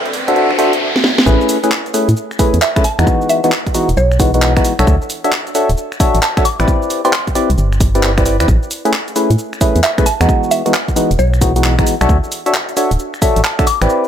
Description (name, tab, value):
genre	UK garage, two-step garage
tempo	133 BPM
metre	4/4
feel	swing 65% on 16ths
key	A major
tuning	A4 = 440 Hz
part	warm analog pad	sustained chords	0.0-0.8 s	C4 to G5	-28 LUFS	right 2 dB	none
part	riser	sound effects	0.0-1.3 s	none	-20 LUFS	equal	none
part	house drum kit	drums	0.1-14.1 s	cabasa, finger snaps, handclaps, hi-hat, snare drum	-19 LUFS	equal	none
part	percussive organ stab	stabs	0.3-14.1 s	E3 to E5	-15 LUFS	left 1 dB	chorus, tape echo
part	organ-like FM bass	bass	1.3-13.9 s	D1 to A2	-14 LUFS	equal	none
part	electronic kick drum	drums	1.3-13.7 s	none	-15 LUFS	equal	none
part	mallet-like synth pluck	melody	2.6-13.8 s	C#5 to D6	-19 LUFS	right 1 dB	chorus, phaser, tape echo
room	light reverb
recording	none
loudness	-11 LUFS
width	side -9 dB against mid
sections	0.0-1.3 A section; 1.3-14.1 B section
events	build-up 0.0-1.3; riser 0.0-1.3; drum fill 0.9-1.3; drop 1.3-14.1; kick drops out 13.9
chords	0.0 Cmaj9; 1.3 Amaj9; 3.1 Emaj9; 4.9 Dmaj9; 6.7 Cmaj9; 8.5 Amaj9; 10.3 Emaj9; 12.1 Dmaj9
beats	0.36 0.81 | 1.26 1.72 2.17 2.62 | 3.07 3.52 3.97 4.42 | 4.87 5.32 5.78 6.23 | 6.68 7.13 7.58 8.03 | 8.48 8.93 9.38 9.84 | 10.29 10.74 11.19 11.64 | 12.09 12.54 12.99 13.44 | 13.89